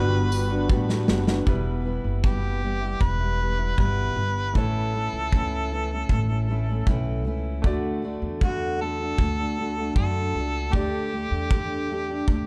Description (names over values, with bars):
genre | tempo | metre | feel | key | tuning
acoustic pop | 78 BPM | 4/4 | straight | unclear | A4 = 440 Hz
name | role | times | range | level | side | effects
mellow harmonica | melody | 0.0-12.5 s | F#4 to B4 | -33 LUFS | equal | digital delay
clear concert grand piano | accompaniment | 0.0-12.5 s | G3 to D5 | -40 LUFS | equal | none
fingerpicked steel-string acoustic guitar | accompaniment | 0.0-12.5 s | E2 to G4 | -32 LUFS | equal | none
hand-pumped harmonium | sustained chords | 0.0-1.4 s | D3 to F#4 | -37 LUFS | equal | none
upright bass | bass | 0.0-12.5 s | E1 to F#2 | -29 LUFS | equal | none
loose indie drum kit | drums | 0.3-12.5 s | kick drum, snare drum, tambourine | -26 LUFS | equal | none
room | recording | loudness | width
little or no reverb | dark, warm production | -25 LUFS | mono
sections
0.0-1.5 A section; 1.5-12.5 B section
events
drum fill 0.7-1.5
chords
0.0 Gmaj7; 1.5 Em; 4.6 A; 7.6 D; 10.7 Gsus2/D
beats
0.70 | 1.47 2.24 3.01 3.78 | 4.55 5.33 6.10 6.87 | 7.64 8.42 9.19 9.96 | 10.74 11.51 12.28